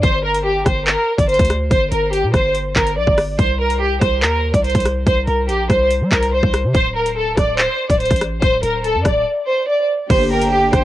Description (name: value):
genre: hip hop, drill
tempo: 143 BPM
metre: 4/4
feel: half-time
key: G minor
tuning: A4 = 440 Hz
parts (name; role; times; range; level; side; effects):
- rich studio violin section; melody; 0.0-10.8 s; G4 to D5; -17 LUFS; equal; low-pass filter, cassette tape, tape echo
- hard-hitting 808-style bass; bass; 0.0-10.8 s; D1 to G3; -21 LUFS; equal; none
- drill drum kit; drums; 0.0-10.8 s; crash cymbal, handclaps, hi-hat, kick drum, rim click; -18 LUFS; equal; overdrive, cassette tape
- warm studio string section; sustained chords; 10.1-10.8 s; D3 to G4; -20 LUFS; left 2 dB; cassette tape
- breathy mellow silver concert flute; second line; 10.3-10.8 s; G5; -19 LUFS; right 3 dB; cassette tape
room: light reverb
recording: home recording on cassette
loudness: -14 LUFS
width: side -14 dB against mid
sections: 0.0-10.1 A section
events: break 9.3-10.1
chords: 0.0 Gm; 3.4 N.C.; 10.1 Gm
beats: | 0.03 0.45 0.87 1.29 | 1.71 2.13 2.55 2.97 | 3.39 3.81 4.23 4.65 | 5.07 5.49 5.91 6.33 | 6.74 7.16 7.58 8.00 | 8.42 8.84 9.26 9.68 | 10.10 10.52